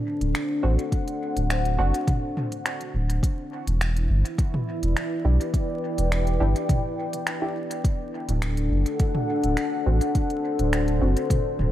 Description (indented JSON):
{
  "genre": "ambient dub",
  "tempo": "104 BPM",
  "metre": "4/4",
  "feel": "straight",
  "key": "E minor",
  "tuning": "A4 = 440 Hz",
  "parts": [
    { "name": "deep dark ambient pad", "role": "sustained chords", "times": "0.0-11.7 s", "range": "D4 to G5", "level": "-27 LUFS", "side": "left 1 dB", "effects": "chorus, built-in reverb" },
    { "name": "warm sub bass", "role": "bass", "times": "0.2-11.7 s", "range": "D1 to B1", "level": "-22 LUFS", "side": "equal", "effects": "none" },
    { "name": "organic electronic drum kit", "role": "drums", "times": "0.2-11.7 s", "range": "finger snaps, hi-hat, toms", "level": "-31 LUFS", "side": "equal", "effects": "overdrive, dub echo" },
    { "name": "filtered dub chord stab", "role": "stabs", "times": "0.6-11.7 s", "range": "C4 to G4", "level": "-33 LUFS", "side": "right 2 dB", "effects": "lush chorus, dub echo" },
    { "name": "electronic kick drum", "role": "drums", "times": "0.9-11.4 s", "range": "none", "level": "-23 LUFS", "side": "equal", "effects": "none" }
  ],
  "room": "light reverb, digital ambience",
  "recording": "vinyl crackle",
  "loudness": "-22 LUFS",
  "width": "side -13 dB against mid",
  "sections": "0.0-3.2 A section; 3.2-11.7 B section",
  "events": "none",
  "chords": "0.0 D7; 3.2 Em7; 7.8 D7"
}